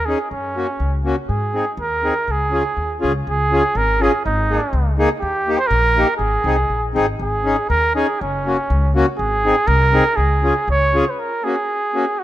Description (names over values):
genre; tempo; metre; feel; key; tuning
alpine folk, alpine dance band; 122 BPM; 2/4; rubato; Db major; A4 = 440 Hz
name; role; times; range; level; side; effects
mellow trumpet; melody; 0.0-12.2 s; Db4 to Db5; -19 LUFS; right 2 dB; none
upright bass; bass; 0.0-11.0 s; Gb1 to Ab2; -20 LUFS; equal; none
accordion; accompaniment; 0.1-12.1 s; Bb3 to Ab4; -21 LUFS; left 2 dB; none
room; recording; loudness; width
light reverb, small room ambience; rough home demo mix; -16 LUFS; side -13 dB against mid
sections
0.0-3.3 A section; 3.3-11.2 A section; 11.2-12.2 B section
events
none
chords
0.3 Gb; 1.3 Ab; 2.3 Db; 4.2 Absus2; 5.2 Eb; 6.2 Ab; 7.2 Absus4; 8.2 Gb; 9.2 Ab; 10.2 Db; 11.2 F#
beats
| 0.31 0.80 | 1.29 1.77 | 2.26 2.76 | 3.26 3.76 | 4.25 4.73 | 5.22 5.71 | 6.20 6.69 | 7.20 7.71 | 8.21 8.70 | 9.19 9.68 | 10.17 10.67 | 11.18 11.68 | 12.19